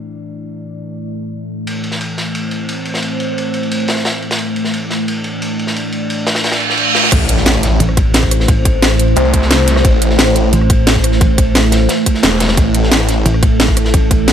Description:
dark technical drum and bass; 176 BPM; 4/4; straight; A minor; A4 = 440 Hz
deep dark ambient pad; sustained chords; 0.0-14.3 s; A3 to D5; -18 LUFS; equal; chorus, built-in reverb, sidechain pumping
crunchy breakbeat drum kit; drums; 1.7-14.3 s; ride cymbal, snare drum; -20 LUFS; equal; high-pass filter on cymbals, studio reverb, high-pass filter on snare, high-pass filter on room
reverse cymbal and impact; sound effects; 6.6-8.5 s; -16 LUFS; right 3 dB
snarling distorted saw bass; bass; 7.1-13.2 s; E1 to C2; -14 LUFS; equal; distortion, overdrive
drum and bass drum kit; drums; 7.1-14.3 s; crash cymbal, hi-hat, rim click, snare drum; -15 LUFS; equal; overdrive, low-pass filter on toms, studio reverb, low-pass filter on hats, low-pass filter on cymbals, low-pass filter on snare
electronic kick drum; drums; 7.1-14.2 s; -13 LUFS; equal; overdrive, studio reverb
pulsing pluck wobble bass; bass; 7.8-14.3 s; A1; -14 LUFS; equal; chorus
digital ambience; -11 LUFS; side -9 dB against mid
0.0-7.1 A section; 7.1-14.3 B section
filter sweep on ambient pad 0.0-7.1; reverse cymbal 6.6-7.1; drop 7.1-14.3; impact 7.1-8.5
0.0 Am

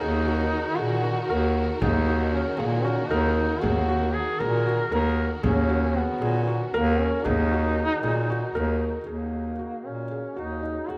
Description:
contemporary instrumental, chamber music in an uneven meter; 232 BPM (eighths); 7/8; straight; Eb minor; A4 = 442 Hz
warm duduk; melody; 0.0-11.0 s; Bb3 to Bb4; -31 LUFS; equal
warm studio string section; sustained chords; 0.0-9.0 s; Eb3 to Bb4; -38 LUFS; equal
felt-muted upright piano; arpeggios; 0.0-11.0 s; Eb4 to Bb4; -32 LUFS; equal
clear bass clarinet; bass; 0.0-11.0 s; Eb2 to Bb2; -28 LUFS; equal
frame drum; percussion; 1.8-8.8 s; -34 LUFS; equal
wet cathedral reverb, RT60 6.1 s; in a vast, echoing space; -25 LUFS; mono
0.0-9.1 A section; 9.1-11.0 B section
0.0 Ebm

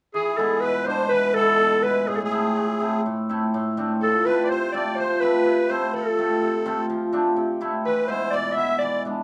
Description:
klezmer; 124 BPM; 4/4; straight; E phrygian dominant; A4 = 440 Hz
breathy clarinet; melody; 0.1-9.0 s; G#4 to E5; -25 LUFS; equal
musette accordion; second line; 0.1-9.0 s; G#4 to E5; -30 LUFS; equal
cimbalom; accompaniment; 0.1-9.2 s; A2 to F4; -26 LUFS; equal
moderate studio reverb, RT60 0.5 s; -22 LUFS; mono
0.2-9.2 A section
0.2 E; 2.1 Am; 4.0 F; 7.9 E

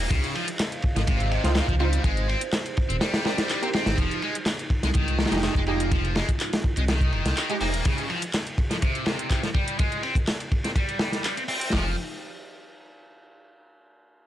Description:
breakbeat, breaks; 124 BPM; 4/4; swing 53% on 16ths; F minor; A4 = 440 Hz
dark analog pad; sustained chords; 0.0-12.0 s; Ab3 to F5; -36 LUFS; right 3 dB; chorus, phaser, sidechain pumping
distorted electric guitar; riff; 0.0-11.9 s; C3 to C4; -30 LUFS; left 1 dB; overdrive, vintage 12-bit sampler grit, low-pass filter, tape echo
dark detuned saw bass; bass; 0.0-7.8, 11.7-11.9 s; Eb1 to Db2; -26 LUFS; equal
garage drum kit; drums; 0.0-11.7 s; handclaps, hi-hat; -32 LUFS; equal
crunchy breakbeat drum kit; drums; 0.1-11.8 s; china cymbal, hi-hat, kick drum, ride cymbal, snare drum; -26 LUFS; equal
orchestra-hit-like synth stab; stabs; 1.4-7.7 s; Ab3 to G4; -32 LUFS; right 3 dB; built-in reverb, tape echo
small room ambience; dry, gritty hardware recording, cassette tape; -22 LUFS; side -12 dB against mid
0.0-4.0 A section; 4.0-11.7 B section; 11.7-13.7 C section
filter sweep on analog synth pad 4.0-11.7
0.1 Dbmaj9; 2.0 Abmaj7; 4.0 Fm9; 7.9 Dbmaj9 (rootless); 9.8 Abmaj7 (rootless); 11.7 Fm9

